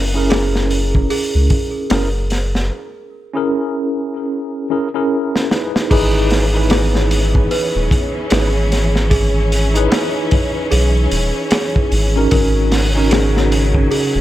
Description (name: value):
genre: trip hop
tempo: 75 BPM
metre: 4/4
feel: swing 60% on 16ths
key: unclear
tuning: A4 = 440 Hz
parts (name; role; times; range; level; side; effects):
- mellow tine electric piano; accompaniment; 0.0-14.2 s; C#4 to B4; -19 LUFS; equal; medium stereo tremolo, harmonic tremolo, tape echo
- celesta; arpeggios; 0.0-14.2 s; G#4 to B4; -23 LUFS; right 4 dB; tape echo
- soft dub sub bass; bass; 0.0-14.2 s; D#1 to C#2; -16 LUFS; equal; none
- crunchy breakbeat drum kit; drums; 0.3-14.1 s; crash cymbal, hi-hat, kick drum, snare drum; -18 LUFS; equal; vintage 12-bit sampler grit
- clear symphonic string section; sustained chords; 5.9-14.2 s; C#3 to C#4; -23 LUFS; left 1 dB; none
room: small room ambience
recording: none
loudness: -14 LUFS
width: side -14 dB against mid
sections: 0.0-5.9 A section; 5.9-14.2 B section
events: break 2.7-5.9; drum fill 5.3-5.9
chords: 0.0 F#9; 5.9 D#m7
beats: 0.31 1.11 1.91 | 2.71 3.51 4.31 5.11 | 5.91 6.71 7.51 8.31 | 9.11 9.91 10.71 11.51 | 12.31 13.11 13.91